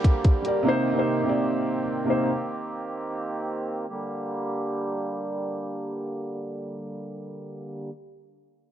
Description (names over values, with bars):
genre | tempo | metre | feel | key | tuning
hip hop, trap | free time | none | none | G minor | A4 = 440 Hz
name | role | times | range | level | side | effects
felt-muted upright piano | accompaniment | 0.0-2.3 s | C3 to D5 | -23 LUFS | right 1 dB | low-pass filter
hand-pumped harmonium | sustained chords | 0.0-7.9 s | D3 to G4 | -30 LUFS | right 1 dB | none
trap drum kit | drums | 0.0-0.5 s | hi-hat, kick drum | -19 LUFS | equal | none
room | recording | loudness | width
light reverb, small room ambience | dark, warm production, low-pass filter | -25 LUFS | side -10 dB against mid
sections
0.0-3.9 A section; 3.9-7.1 B section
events
filter sweep 0.0-3.9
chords
0.0 Gm; 0.7 Cm7; 3.9 Gm